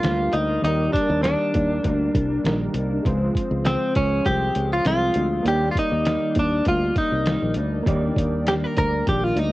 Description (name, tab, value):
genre	indie pop, bedroom pop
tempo	100 BPM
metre	4/4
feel	swing 55% on 16ths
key	Eb major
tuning	A4 = 440 Hz
part	direct-recorded clean electric guitar	melody	0.0-9.5 s	C4 to Bb4	-23 LUFS	equal	lush chorus, cassette tape, analog delay
part	mellow electric guitar	accompaniment	0.0-9.5 s	Db3 to D4	-28 LUFS	left 3 dB	analog chorus, vibrato effect, cassette tape
part	warbly lo-fi synth keys	accompaniment	0.0-9.5 s	G3 to D5	-29 LUFS	right 2 dB	chorus, cassette tape
part	fingered electric bass	bass	0.0-9.5 s	Bb1 to Eb2	-24 LUFS	equal	none
part	lo-fi sampler-style drum kit	drums	0.0-9.5 s	hi-hat, kick drum, snare drum	-26 LUFS	equal	cassette tape
room	light reverb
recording	home recording on cassette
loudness	-19 LUFS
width	side -18 dB against mid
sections	0.0-7.9 A section; 7.9-9.5 B section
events	clean electric guitar solo 7.9-9.5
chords	0.0 Ebmaj7; 3.0 Dbmaj7; 5.5 Ebmaj7